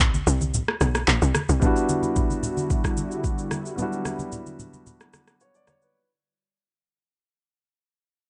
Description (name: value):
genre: amapiano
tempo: 111 BPM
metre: 4/4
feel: straight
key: E minor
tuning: A4 = 439 Hz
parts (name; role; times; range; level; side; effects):
- tight log drum bass; bass; 0.0-1.6 s; A#1 to B#1; -24 LUFS; equal; none
- smooth R&B drum kit; drums; 0.0-5.9 s; handclaps, kick drum, rim click, shaker; -27 LUFS; equal; overdrive
- congas; percussion; 0.0-5.8 s; none; -33 LUFS; equal; none
- dark concert grand piano; accompaniment; 1.6-6.1 s; F#3 to D5; -29 LUFS; equal; none
- warm analog pad; sustained chords; 1.6-5.9 s; D3 to F#4; -35 LUFS; equal; chorus, sidechain pumping
room: little or no reverb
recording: nothing above 10.3 kHz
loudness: -24 LUFS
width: mono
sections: 0.0-1.6 A section; 1.6-5.9 B section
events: drop 0.0-1.6; kick muted 0.5-1.6; fade-out 1.6-5.9; break 4.9-5.9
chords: 0.0 N.C.; 1.6 Em9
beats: 0.00 0.54 1.08 | 1.62 2.16 2.70 3.24 | 3.78 4.33 4.87 5.41